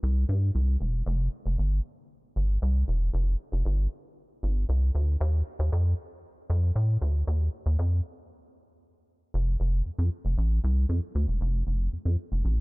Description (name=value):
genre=funk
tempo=116 BPM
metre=4/4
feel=straight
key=F major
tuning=A4 = 442 Hz
part: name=rubbery square bass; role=solo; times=0.0-12.6 s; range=E1 to A2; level=-24 LUFS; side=equal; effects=none
room=little or no reverb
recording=none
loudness=-25 LUFS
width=side -26 dB against mid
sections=0.0-1.1 A section; 1.1-9.3 B section; 9.3-12.6 C section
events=stop 8.3-9.3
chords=none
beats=0.03 0.55 | 1.07 1.59 2.10 2.62 | 3.14 3.65 4.17 4.69 | 5.21 5.72 6.24 6.76 | 7.28 7.79 8.31 8.83 | 9.34 9.86 10.38 10.90 | 11.41 11.93 12.45